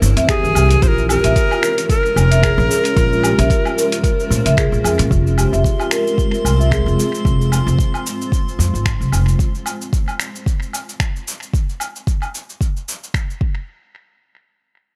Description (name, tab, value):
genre	organic downtempo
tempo	112 BPM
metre	4/4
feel	swing 56% on 16ths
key	F harmonic minor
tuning	A4 = 439 Hz
part	granular cloud pad	sustained chords	0.0-9.4 s	E3 to Db5	-27 LUFS	equal	built-in reverb, sidechain pumping
part	upright bass	bass	0.0-9.3 s	F1 to Bb2	-18 LUFS	equal	none
part	dusty soul sampler-style drum kit	drums	0.0-13.4 s	cabasa, finger snaps, hi-hat, woodblock	-26 LUFS	equal	overdrive, tape echo
part	marimba with medium mallets	arpeggios	0.2-7.1 s	F4 to E5	-23 LUFS	equal	low-pass filter, tape echo
part	bright reedy Native American-style cedar flute	melody	0.3-4.5 s	Ab4 to C5	-23 LUFS	equal	tape echo
part	electronic kick drum	drums	0.3-13.5 s	none	-20 LUFS	equal	none
part	drifting glass-harmonics texture	texture	5.5-9.4 s	C6	-35 LUFS	equal	chorus, built-in reverb
room	light reverb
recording	echo-heavy mix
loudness	-17 LUFS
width	mono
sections	0.0-5.1 A section; 5.1-13.7 B section; 13.7-15.0 C section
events	none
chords	0.0 C7; 0.8 Bbm7; 5.1 Fm; 9.4 N.C.